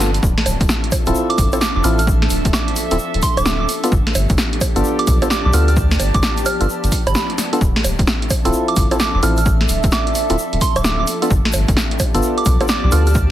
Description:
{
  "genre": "UK garage, two-step garage",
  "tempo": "130 BPM",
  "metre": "4/4",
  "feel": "swing 64% on 16ths",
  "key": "D dorian",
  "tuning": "A4 = 440 Hz",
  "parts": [
    { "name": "soft string machine", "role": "sustained chords", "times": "0.0-13.3 s", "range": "F3 to E5", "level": "-30 LUFS", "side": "equal", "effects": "ensemble chorus, sidechain pumping" },
    { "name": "percussive organ stab", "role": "stabs", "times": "0.0-13.1 s", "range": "B3 to A4", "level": "-21 LUFS", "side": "left 1 dB", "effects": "chorus, digital delay" },
    { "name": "soft dub sub bass", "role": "bass", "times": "0.0-13.3 s", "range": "D1 to D2", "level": "-17 LUFS", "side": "equal", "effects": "none" },
    { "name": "punchy analog drum machine", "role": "drums", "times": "0.0-13.1 s", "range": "bongos, hi-hat, snare drum", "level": "-21 LUFS", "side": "right 1 dB", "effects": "none" },
    { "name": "egg shaker", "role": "percussion", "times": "0.0-13.3 s", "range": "none", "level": "-29 LUFS", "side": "left 3 dB", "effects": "none" },
    { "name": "warbly tape-like pad", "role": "texture", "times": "0.0-13.3 s", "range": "D4 to A5", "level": "-26 LUFS", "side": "right 1 dB", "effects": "chorus, built-in reverb, phaser, sidechain pumping" },
    { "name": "electronic kick drum", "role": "drums", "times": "0.2-13.3 s", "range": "none", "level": "-19 LUFS", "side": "equal", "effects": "none" },
    { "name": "soft synth bell", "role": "melody", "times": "1.3-13.1 s", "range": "B5 to F6", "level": "-24 LUFS", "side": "right 4 dB", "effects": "chorus, digital delay" }
  ],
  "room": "digital ambience",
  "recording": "dense, heavily limited modern master, vinyl crackle",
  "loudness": "-14 LUFS",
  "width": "side -12 dB against mid",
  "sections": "0.0-13.3 A section",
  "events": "none",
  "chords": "0.2 Dm9; 3.7 G9; 7.6 Dm9; 11.1 G9"
}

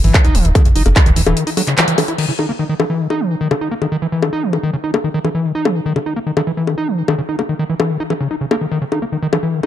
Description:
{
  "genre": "psychedelic trance",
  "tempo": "147 BPM",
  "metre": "4/4",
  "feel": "straight",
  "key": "Eb phrygian",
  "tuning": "A4 = 439 Hz",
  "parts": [
    { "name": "overdriven acid bass", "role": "riff", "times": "0.0-9.7 s", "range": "Db3 to Fb4", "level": "-18 LUFS", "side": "equal", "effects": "distortion, auto-pan, cassette tape, sidechain pumping, digital delay" },
    { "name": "plucky analog bass", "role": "bass", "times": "0.0-1.3 s", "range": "Eb1 to Ab1", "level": "-14 LUFS", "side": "equal", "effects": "none" },
    { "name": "drum and bass drum kit", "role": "drums", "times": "0.0-9.7 s", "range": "bongos, crash cymbal, handclaps, hi-hat", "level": "-19 LUFS", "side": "left 4 dB", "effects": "none" },
    { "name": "electronic kick drum", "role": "drums", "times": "0.1-1.0 s", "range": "none", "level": "-12 LUFS", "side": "equal", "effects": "none" }
  ],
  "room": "light reverb",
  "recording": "dark, warm production",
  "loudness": "-14 LUFS",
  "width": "side -11 dB against mid",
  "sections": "0.0-2.2 A section; 2.2-9.7 B section",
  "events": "break 1.4-2.2; band accent 1.8",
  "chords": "0.0 Eb5"
}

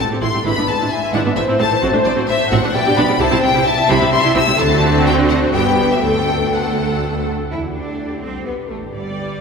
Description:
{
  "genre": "quick classical-period movement for string orchestra",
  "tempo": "128 BPM",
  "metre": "3/4",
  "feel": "rubato",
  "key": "G major",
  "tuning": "A4 = 440 Hz",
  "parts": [
    { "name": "rich studio violin section", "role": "melody", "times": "0.0-9.4 s", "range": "G3 to E6", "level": "-19 LUFS", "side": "left 5 dB", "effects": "none" },
    { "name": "dark studio violin section", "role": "second line", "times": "0.0-9.4 s", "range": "G4 to E5", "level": "-22 LUFS", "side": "left 3 dB", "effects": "none" },
    { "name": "rich studio viola section", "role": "accompaniment", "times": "0.0-9.4 s", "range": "E3 to D5", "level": "-20 LUFS", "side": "right 1 dB", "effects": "none" },
    { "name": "bright studio cello section", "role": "bass", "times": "0.0-9.4 s", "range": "D2 to E4", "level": "-22 LUFS", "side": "right 3 dB", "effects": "none" },
    { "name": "rich studio double bass section", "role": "bass", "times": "0.0-9.4 s", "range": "G1 to E2", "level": "-24 LUFS", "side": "right 3 dB", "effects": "none" }
  ],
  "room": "wet cathedral reverb, RT60 5.3 s",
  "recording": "recorded in a church or concert hall",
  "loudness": "-14 LUFS",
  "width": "side -5 dB against mid",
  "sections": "0.0-7.5 A section; 7.5-9.4 B section",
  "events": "none",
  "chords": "0.5 E7/G#; 1.4 Am; 1.8 D7/A (rootless); 2.7 G/B; 3.2 C; 4.6 D7; 5.5 G; 6.0 D; 7.5 G"
}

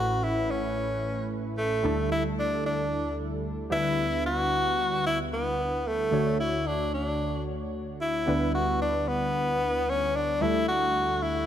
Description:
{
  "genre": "pop",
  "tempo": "112 BPM",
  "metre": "4/4",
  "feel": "straight",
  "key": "unclear",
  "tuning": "A4 = 440 Hz",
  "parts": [
    { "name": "bright tenor saxophone", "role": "melody", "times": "0.0-11.5 s", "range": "A3 to F#4", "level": "-27 LUFS", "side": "equal", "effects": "none" },
    { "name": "warm analog keys", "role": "accompaniment", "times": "0.0-11.5 s", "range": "A1 to C#5", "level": "-29 LUFS", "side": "equal", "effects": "chorus" }
  ],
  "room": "moderate lush hall reverb, RT60 2.2 s",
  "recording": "none",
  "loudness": "-25 LUFS",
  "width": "side -10 dB against mid",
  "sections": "0.0-1.8 A section; 1.8-11.5 B section",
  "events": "none",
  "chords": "0.0 Aadd9; 1.8 A7sus4/D; 3.7 G6/D; 6.1 Dmaj7; 8.3 Em7/D; 10.4 A7sus4/D"
}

